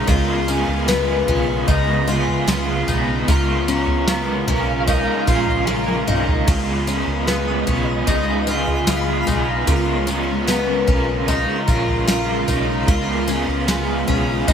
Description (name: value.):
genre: dream pop.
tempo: 75 BPM.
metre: 4/4.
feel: straight.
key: Db mixolydian.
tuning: A4 = 438 Hz.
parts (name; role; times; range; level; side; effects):
crunchy overdriven guitar; accompaniment; 0.0-14.5 s; Db3 to Bb4; -23 LUFS; right 2 dB; tremolo, analog chorus.
shimmering ambient pad; sustained chords; 0.0-14.5 s; Db3 to Bb4; -24 LUFS; right 1 dB; chorus, built-in reverb, phaser.
picked twelve-string acoustic guitar; arpeggios; 0.0-14.5 s; Cb4 to F4; -22 LUFS; left 4 dB; lush chorus, ping-pong delay.
vintage muted fingered electric bass; bass; 0.0-14.5 s; Bb1 to Db2; -25 LUFS; equal; none.
twinkling granular texture; texture; 0.0-13.2 s; Eb5 to F6; -31 LUFS; right 1 dB; built-in reverb, wide subtle chorus, ping-pong delay.
soft vintage rhythm box; drums; 0.1-14.5 s; crash cymbal, kick drum, snare drum, tambourine, toms; -22 LUFS; right 1 dB; overdrive, gated reverb.
room: wet lush hall reverb, RT60 2.6 s.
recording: bright 1980s-style digital production.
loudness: -16 LUFS.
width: side -8 dB against mid.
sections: 0.0-14.5 A section.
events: drum fill 5.7-6.5.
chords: 0.1 Db7; 3.3 Bbm7; 6.5 Db7; 9.7 Bbm7; 12.9 Db7.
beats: | 0.08 0.88 1.68 2.48 | 3.28 4.08 4.88 5.68 | 6.48 7.28 8.08 8.88 | 9.68 10.48 11.28 12.08 | 12.88 13.68 14.48.